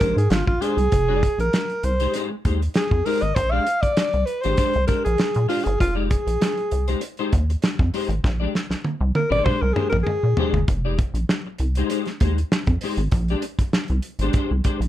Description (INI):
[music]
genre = funk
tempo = 98 BPM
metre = 4/4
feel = straight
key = F dorian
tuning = A4 = 440 Hz
[part]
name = warm alto saxophone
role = melody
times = 0.0-10.6 s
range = F4 to F5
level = -22 LUFS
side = equal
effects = slapback echo
[part]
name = semi-hollow electric guitar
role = accompaniment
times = 0.0-14.8 s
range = Ab3 to D5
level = -27 LUFS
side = left 4 dB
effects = ensemble chorus
[part]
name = rubbery square bass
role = bass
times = 0.0-14.9 s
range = F1 to Bb2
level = -22 LUFS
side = equal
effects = none
[part]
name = warm soul drum kit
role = drums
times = 0.0-14.9 s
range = hi-hat, kick drum, snare drum, toms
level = -23 LUFS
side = equal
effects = none
[sound]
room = light reverb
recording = dark, warm production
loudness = -19 LUFS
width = side -13 dB against mid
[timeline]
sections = 0.0-10.7 A section; 10.7-14.9 B section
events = alto saxophone solo 0.0-10.7; drum fill 8.2-10.7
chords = 0.0 Bb13; 0.9 Fm9; 3.4 Bb13; 5.8 Fm9; 8.2 Bb13; 10.7 Fm9; 13.1 Bb13